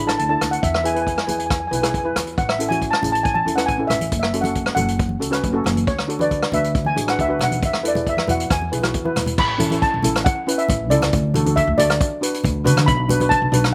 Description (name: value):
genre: calypso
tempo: 137 BPM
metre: 4/4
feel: straight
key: A major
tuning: A4 = 441 Hz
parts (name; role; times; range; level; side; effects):
- steel pan; melody; 0.0-13.7 s; C#5 to B5; -24 LUFS; equal; slapback echo
- steel pan; accompaniment; 0.0-13.7 s; C#4 to B4; -26 LUFS; equal; slapback echo
- upright bass; bass; 0.0-13.7 s; F#1 to D3; -26 LUFS; equal; none
- unplugged drum kit; drums; 0.1-13.7 s; crash cymbal, hi-hat, kick drum, rim click; -25 LUFS; equal; none
- congas; percussion; 2.7-13.6 s; none; -30 LUFS; equal; none
room: little or no reverb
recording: recorded outdoors, with no room sound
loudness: -20 LUFS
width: mono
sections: 0.0-9.4 A section; 9.4-13.7 B section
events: drum fill 8.8-9.4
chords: 0.0 Dsus2; 0.6 E; 2.4 Amaj7; 4.1 F#m; 5.9 D; 7.6 E5; 8.5 E; 9.4 A; 11.1 D; 12.9 Bm7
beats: 0.18 | 0.62 1.06 1.49 1.93 | 2.37 2.81 3.25 3.68 | 4.12 4.56 5.00 5.43 | 5.87 6.31 6.75 7.19 | 7.63 8.06 8.50 8.94 | 9.38 9.82 10.26 10.69 | 11.13 11.57 12.01 12.44 | 12.88 13.32